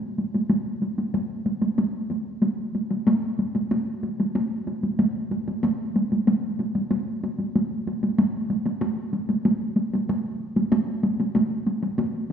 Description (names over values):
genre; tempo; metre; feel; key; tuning
japanese traditional; 94 BPM; 4/4; straight; none; none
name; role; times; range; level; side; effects
taiko ensemble; percussion; 0.2-12.3 s; none; -22 LUFS; equal; none
room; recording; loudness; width
wet recital hall reverb, RT60 1.7 s; recorded in a church or concert hall, nothing above 7.7 kHz; -22 LUFS; side -8 dB against mid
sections
0.0-12.3 A section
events
none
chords
none